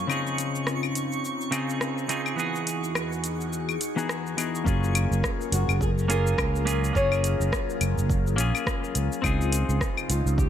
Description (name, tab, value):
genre	sunset chillout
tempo	105 BPM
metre	4/4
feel	swing 57% on 16ths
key	Gb lydian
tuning	A4 = 440 Hz
part	semi-hollow electric guitar	accompaniment	0.0-10.5 s	Db3 to Ab4	-30 LUFS	moving between left 6 dB and right 5 dB	auto-pan, ping-pong delay
part	airy breathy pad	sustained chords	0.0-10.5 s	E2 to Bb4	-34 LUFS	left 2 dB	chorus, phaser
part	twinkling granular texture	texture	0.0-4.7 s	Db6	-36 LUFS	right 6 dB	built-in reverb
part	smooth R&B drum kit	drums	0.1-10.5 s	claves, hi-hat, rim click, shaker	-31 LUFS	left 2 dB	none
part	sustaining fretless electric bass	bass	4.7-10.5 s	Gb1 to Db2	-24 LUFS	equal	none
part	electronic kick drum	drums	4.7-10.5 s	none	-28 LUFS	right 1 dB	overdrive
part	flamenco guitar	melody	5.5-10.5 s	F4 to Db5	-30 LUFS	left 1 dB	tape echo
room	light reverb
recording	none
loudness	-23 LUFS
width	side -10 dB against mid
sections	0.0-4.7 A section; 4.7-10.5 B section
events	filter sweep on analog synth pad 0.0-4.7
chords	0.1 Dbmaj9; 2.4 Emaj9; 4.7 Gbmaj9; 9.2 Dbmaj9